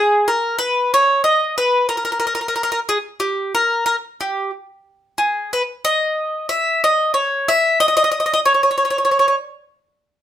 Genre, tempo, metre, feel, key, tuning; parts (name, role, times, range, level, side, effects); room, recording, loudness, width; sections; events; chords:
italian folk; 92 BPM; 4/4; straight; A4 = 439 Hz
bowl-back mandolin; solo; 0.0-9.3 s; G4 to E5; -15 LUFS; equal
moderate studio reverb, RT60 0.7 s; -16 LUFS; side -11 dB against mid
0.0-10.2 A section